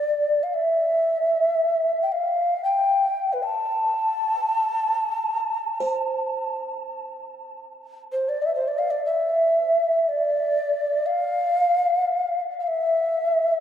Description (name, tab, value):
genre	world meditative, free-time meditation music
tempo	free time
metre	none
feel	none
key	unclear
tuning	A4 = 440 Hz
part	mellow hollow Native American-style cedar flute	melody	0.0-13.6 s	B4 to A5	-21 LUFS	equal	dub echo
part	buzzing kalimba	texture	5.8-13.6 s	C5	-30 LUFS	right 3 dB	none
room	wet spring reverb, RT60 2.1 s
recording	echo-heavy mix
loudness	-20 LUFS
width	side -9 dB against mid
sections	0.0-13.6 A section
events	none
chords	none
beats	free time